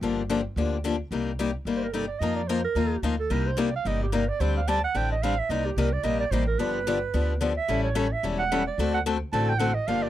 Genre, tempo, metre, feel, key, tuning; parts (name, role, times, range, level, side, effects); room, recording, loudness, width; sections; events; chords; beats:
acoustic string swing (jazz manouche); 219 BPM; 4/4; swing 58% on 8ths; A4 = 440 Hz
picked steel-string acoustic guitar; accompaniment; 0.0-10.1 s; C3 to Bb4; -27 LUFS; left 5 dB
upright bass; bass; 0.0-10.1 s; E1 to F2; -29 LUFS; right 1 dB
mellow clarinet; second line; 1.8-10.1 s; G4 to A5; -28 LUFS; right 6 dB
light reverb; dry, close 1970s-style studio recording; -24 LUFS; side -12 dB against mid
0.0-1.1 A section; 1.1-9.9 A section
clarinet solo 1.1-10.1
0.0 Gm7; 1.1 Cm7; 2.2 F7sus4; 3.3 Cm7; 4.4 D7sus4; 5.5 Cm7; 6.6 G7; 7.7 A7; 8.8 D7
| 0.02 0.30 0.57 0.85 | 1.12 1.39 1.67 1.94 | 2.21 2.49 2.76 3.04 | 3.31 3.58 3.86 4.13 | 4.41 4.68 4.96 5.23 | 5.50 5.78 6.05 6.32 | 6.60 6.87 7.14 7.42 | 7.69 7.96 8.24 8.51 | 8.79 9.06 9.33 9.61 | 9.88